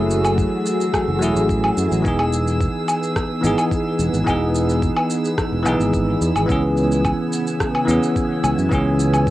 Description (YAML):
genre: sunset chillout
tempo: 108 BPM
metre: 4/4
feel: straight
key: unclear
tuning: A4 = 439 Hz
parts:
  - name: bell-like tine electric piano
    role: accompaniment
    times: 0.0-9.3 s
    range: E3 to G#4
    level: -20 LUFS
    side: equal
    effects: auto-pan, cassette tape, tape echo
  - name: soft string machine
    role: sustained chords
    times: 0.0-9.3 s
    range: C#3 to G#5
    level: -26 LUFS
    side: equal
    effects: phaser, ensemble chorus, cassette tape
  - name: fingered electric bass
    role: bass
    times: 0.0-9.3 s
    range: E1 to F#2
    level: -21 LUFS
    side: equal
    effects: none
  - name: drifting glass-harmonics texture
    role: texture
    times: 0.0-9.3 s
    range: E6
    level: -32 LUFS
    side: right 2 dB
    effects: chorus, built-in reverb, cassette tape
  - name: electronic shaker, woodblock and rim click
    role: drums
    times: 0.1-9.3 s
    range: none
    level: -24 LUFS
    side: equal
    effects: cassette tape
  - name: electronic kick drum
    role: drums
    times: 0.4-9.3 s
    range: none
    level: -24 LUFS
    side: equal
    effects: cassette tape
room: moderate booth ambience, RT60 0.2 s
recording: home recording on cassette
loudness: -17 LUFS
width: side -15 dB against mid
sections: 0.0-9.3 A section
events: none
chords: 0.0 F#m9; 2.0 Emaj7; 6.5 C#m7